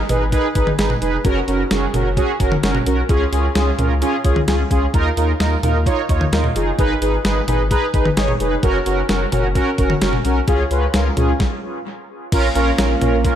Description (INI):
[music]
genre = synth-pop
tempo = 130 BPM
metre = 4/4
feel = straight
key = unclear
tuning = A4 = 438 Hz
[part]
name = round analog bass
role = bass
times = 0.0-13.3 s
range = F1 to Eb2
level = -20 LUFS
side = equal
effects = none
[part]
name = mellow synth brass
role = accompaniment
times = 0.1-13.4 s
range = Db4 to Db5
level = -19 LUFS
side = right 1 dB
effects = chorus, dub echo
[part]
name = clean 12-bit digital drum machine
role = drums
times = 0.1-13.4 s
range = crash cymbal, hi-hat, kick drum, snare drum, toms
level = -20 LUFS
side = equal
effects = dub echo
[part]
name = warm analog pad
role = sustained chords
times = 12.3-13.4 s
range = Bb3 to F4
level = -23 LUFS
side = right 2 dB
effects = chorus
[sound]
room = moderate plate reverb, RT60 1.5 s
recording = echo-heavy mix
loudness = -15 LUFS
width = side -10 dB against mid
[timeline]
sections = 0.0-12.3 A section; 12.3-13.4 B section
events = stop 11.4-12.3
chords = 0.0 Abm; 1.2 Gb; 3.1 Db; 4.9 Ebsus2; 6.8 Abm; 8.6 Gb; 10.5 Db; 11.4 N.C.; 12.3 Bbm